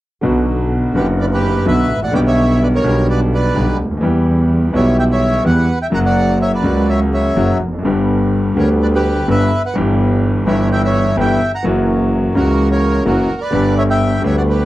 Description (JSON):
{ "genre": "tango", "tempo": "127 BPM", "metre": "4/4", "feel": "rubato", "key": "B harmonic minor", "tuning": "A4 = 440 Hz", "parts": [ { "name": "clear concert grand piano", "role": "accompaniment", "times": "0.2-14.7 s", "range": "F#1 to F#5", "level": "-16 LUFS", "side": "left 1 dB", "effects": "none" }, { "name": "clear double bass", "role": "bass", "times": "0.2-14.7 s", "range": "E#1 to E2", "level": "-16 LUFS", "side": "right 1 dB", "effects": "none" }, { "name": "bandoneon", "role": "melody", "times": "1.0-14.7 s", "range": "F#4 to A#5", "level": "-19 LUFS", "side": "right 1 dB", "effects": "none" } ], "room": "little or no reverb", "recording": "dry, close 1970s-style studio recording", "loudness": "-12 LUFS", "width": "side -16 dB against mid", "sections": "0.2-14.7 A section", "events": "none", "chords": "0.2 Bm; 2.1 G/B; 4.0 Em; 5.9 F#; 7.8 G; 9.8 Em/G; 11.6 F#7; 13.5 G" }